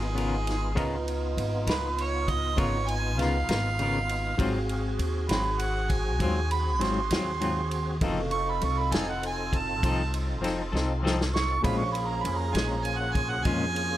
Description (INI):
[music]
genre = slow blues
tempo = 66 BPM (dotted quarters)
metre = 12/8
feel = straight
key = unclear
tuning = A4 = 441 Hz
[part]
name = clear harmonica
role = second line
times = 0.0-14.0 s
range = Ab4 to Db6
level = -30 LUFS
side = right 4 dB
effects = overdrive
[part]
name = overdriven tine electric piano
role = accompaniment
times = 0.0-14.0 s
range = C4 to F6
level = -37 LUFS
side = right 2 dB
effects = phaser, plate reverb
[part]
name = semi-hollow electric guitar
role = accompaniment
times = 0.0-13.6 s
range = Ab2 to Bb4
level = -32 LUFS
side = left 3 dB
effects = tremolo
[part]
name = tonewheel organ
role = sustained chords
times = 0.0-14.0 s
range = Db3 to A4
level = -35 LUFS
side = equal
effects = slow rotary speaker, chorus vibrato
[part]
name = upright bass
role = bass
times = 0.0-14.0 s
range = F1 to F2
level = -30 LUFS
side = equal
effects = none
[part]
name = vintage drum kit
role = drums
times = 0.2-13.9 s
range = kick drum, ride cymbal, snare drum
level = -32 LUFS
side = equal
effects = none
[sound]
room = light reverb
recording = none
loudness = -25 LUFS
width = side -13 dB against mid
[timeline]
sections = 0.0-14.0 A section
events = harmonica solo 0.0-14.0; drum fill 10.7-11.6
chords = 0.0 Db13; 4.4 Ab6; 8.0 F7; 11.6 Bbm7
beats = | 0.78 1.68 2.59 3.49 | 4.40 5.30 6.21 7.11 | 8.02 8.92 9.83 10.73 | 11.64 12.55 13.45